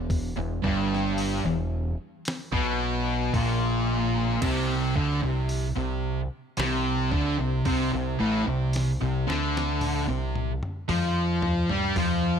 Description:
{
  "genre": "stoner and doom metal",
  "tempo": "56 BPM",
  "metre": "4/4",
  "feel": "straight",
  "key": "unclear",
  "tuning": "A4 = 436 Hz",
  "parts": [
    { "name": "fuzz guitar", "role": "riff", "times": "0.0-12.4 s", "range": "E2 to G3", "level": "-30 LUFS", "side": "left 9 dB", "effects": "distortion" },
    { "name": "sludgy distorted guitar", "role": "riff", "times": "0.0-12.4 s", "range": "E2 to G3", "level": "-29 LUFS", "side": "equal", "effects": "overdrive" },
    { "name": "thick fuzz guitar", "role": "riff", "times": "0.0-12.4 s", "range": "E2 to G3", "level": "-30 LUFS", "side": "right 8 dB", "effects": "distortion" },
    { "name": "growling fingered electric bass", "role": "bass", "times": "0.0-12.4 s", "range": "E1 to G2", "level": "-30 LUFS", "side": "equal", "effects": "overdrive" },
    { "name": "dusty soul sampler-style drum kit", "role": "drums", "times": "0.1-12.2 s", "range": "crash cymbal, hi-hat, kick drum, snare drum, toms", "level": "-32 LUFS", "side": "equal", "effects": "none" }
  ],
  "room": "little or no reverb",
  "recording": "none",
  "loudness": "-24 LUFS",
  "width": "side -7 dB against mid",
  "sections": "0.0-12.4 A section",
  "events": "drum fill 8.7-12.4",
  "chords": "0.0 Em; 4.4 C5"
}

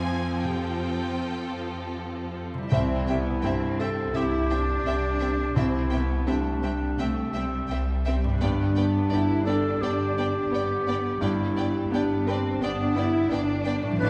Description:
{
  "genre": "cinematic, emotional film score for orchestra",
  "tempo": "85 BPM",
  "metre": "4/4",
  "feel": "rubato",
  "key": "C major",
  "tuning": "A4 = 441 Hz",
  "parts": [
    { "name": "warm studio violin section", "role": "melody", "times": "0.0-14.1 s", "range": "G5 to A5", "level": "-43 LUFS", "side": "equal", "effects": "none" },
    { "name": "rich studio violin section", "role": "second line", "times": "0.0-14.1 s", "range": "F4 to F5", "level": "-40 LUFS", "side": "equal", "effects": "none" },
    { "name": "clear concert grand piano", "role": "accompaniment", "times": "0.0-14.1 s", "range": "C2 to G3", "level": "-33 LUFS", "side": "equal", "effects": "none" },
    { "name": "warm studio viola section", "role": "accompaniment", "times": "0.0-14.1 s", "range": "C3 to B4", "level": "-36 LUFS", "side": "equal", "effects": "none" },
    { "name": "concert harp", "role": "arpeggios", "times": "0.0-14.1 s", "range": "F2 to C6", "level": "-36 LUFS", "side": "equal", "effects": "none" },
    { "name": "warm studio cello section", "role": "bass", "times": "0.0-14.1 s", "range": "F2 to E4", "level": "-34 LUFS", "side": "equal", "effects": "none" },
    { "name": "mellow clarinet", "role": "second line", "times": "2.7-14.1 s", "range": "B3 to B4", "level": "-31 LUFS", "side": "equal", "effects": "none" },
    { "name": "warm studio double bass section", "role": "bass", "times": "2.7-14.1 s", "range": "G1 to C2", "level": "-32 LUFS", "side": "equal", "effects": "none" }
  ],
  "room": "wet scoring stage reverb, RT60 1.6 s",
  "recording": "heard from further back in the room",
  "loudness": "-26 LUFS",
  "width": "mono",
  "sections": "0.0-2.7 A section; 2.7-14.1 A section",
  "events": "none",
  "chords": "0.0 Fadd9; 2.7 C; 8.4 G"
}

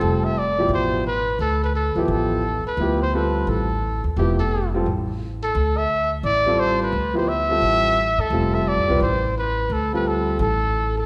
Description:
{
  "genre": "modal jazz",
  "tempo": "173 BPM",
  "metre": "4/4",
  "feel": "swing 63% on 8ths",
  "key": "D dorian",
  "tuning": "A4 = 435 Hz",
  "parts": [
    { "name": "warm trumpet", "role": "melody", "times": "0.0-11.1 s", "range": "G4 to E5", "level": "-24 LUFS", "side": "equal", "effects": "none" },
    { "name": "warm concert grand piano", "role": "accompaniment", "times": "0.0-10.4 s", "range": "B2 to B4", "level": "-27 LUFS", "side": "equal", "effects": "none" },
    { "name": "upright bass", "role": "bass", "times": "0.0-11.1 s", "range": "F1 to A2", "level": "-26 LUFS", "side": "equal", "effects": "none" }
  ],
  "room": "wet recital hall reverb, RT60 1.7 s",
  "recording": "recorded in a church or concert hall",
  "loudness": "-21 LUFS",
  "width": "mono",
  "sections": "0.0-11.1 A section",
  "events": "none",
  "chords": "0.0 Dm9"
}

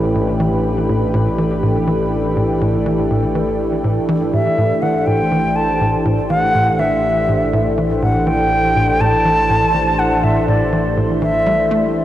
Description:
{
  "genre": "ambient, sequencer-driven space music",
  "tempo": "122 BPM",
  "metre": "4/4",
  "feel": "straight",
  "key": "A dorian",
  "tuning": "A4 = 441 Hz",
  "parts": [
    { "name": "lush unison pad", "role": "sustained chords", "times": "0.0-12.0 s", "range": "E3 to C5", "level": "-18 LUFS", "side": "equal", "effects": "chorus, cassette tape" },
    { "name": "tight sequencer bass", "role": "riff", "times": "0.0-11.9 s", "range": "A2 to A3", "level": "-20 LUFS", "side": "equal", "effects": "wide subtle chorus, cassette tape, analog delay" },
    { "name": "analog drone", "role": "bass", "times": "0.0-12.0 s", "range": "A1", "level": "-24 LUFS", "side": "equal", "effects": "chorus" },
    { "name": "mellow hollow silver concert flute", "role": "melody", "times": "4.3-11.9 s", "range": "D5 to A5", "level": "-17 LUFS", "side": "equal", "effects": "cassette tape, analog delay" }
  ],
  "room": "wet lush hall reverb, RT60 2.7 s",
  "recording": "home recording on cassette",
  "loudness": "-14 LUFS",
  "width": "side -12 dB against mid",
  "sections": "0.0-12.0 A section",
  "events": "none",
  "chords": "0.0 Am"
}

